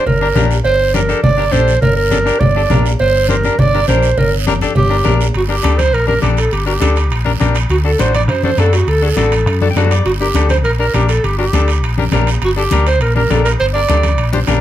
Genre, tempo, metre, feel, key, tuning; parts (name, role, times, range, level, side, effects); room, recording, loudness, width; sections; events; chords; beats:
latin, cumbia; 204 BPM; 4/4; straight; G minor, G harmonic minor from 5.3 s; A4 = 440 Hz
clear clarinet; melody; 0.0-14.3 s; F#4 to D5; -16 LUFS; right 3 dB
semi-hollow electric guitar; accompaniment; 0.0-14.6 s; D4 to A5; -19 LUFS; left 6 dB
hollow-body short-scale fingered electric bass; bass; 0.1-14.6 s; G1 to F#2; -15 LUFS; equal
congas; percussion; 0.1-14.6 s; -19 LUFS; left 1 dB
cowbell and timbales; percussion; 0.1-14.6 s; -24 LUFS; right 4 dB
guiro; percussion; 0.1-14.6 s; -28 LUFS; right 8 dB
moderate studio reverb, RT60 0.5 s; -11 LUFS; side -12 dB against mid
0.0-5.3 A section; 5.3-14.6 B section
clean electric guitar fill 9.5-10.1; drum fill 14.3
0.0 Gm; 7.7 D; 10.1 Gm
0.07 0.36 | 0.66 0.95 1.24 1.54 | 1.83 2.12 2.42 2.71 | 3.00 3.29 3.59 3.88 | 4.17 4.47 4.76 5.05 | 5.35 5.64 5.94 6.23 | 6.53 6.82 7.12 7.41 | 7.71 8.00 8.29 8.59 | 8.88 9.18 9.47 9.77 | 10.06 10.36 10.65 10.95 | 11.24 11.54 11.83 12.13 | 12.42 12.72 13.01 13.31 | 13.60 13.89 14.19 14.48